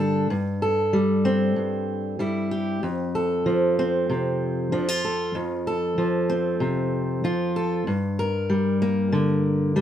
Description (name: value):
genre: folk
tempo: 95 BPM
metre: 4/4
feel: straight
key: F major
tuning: A4 = 440 Hz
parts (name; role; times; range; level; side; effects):
- fingerpicked steel-string acoustic guitar; solo; 0.0-9.8 s; F2 to Bb4; -21 LUFS; equal; none
room: moderate studio ambience, RT60 0.5 s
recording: band playing live in one room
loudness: -21 LUFS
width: side -10 dB against mid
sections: 0.0-9.8 A section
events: none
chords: 0.3 C/G; 2.8 F; 7.9 Gm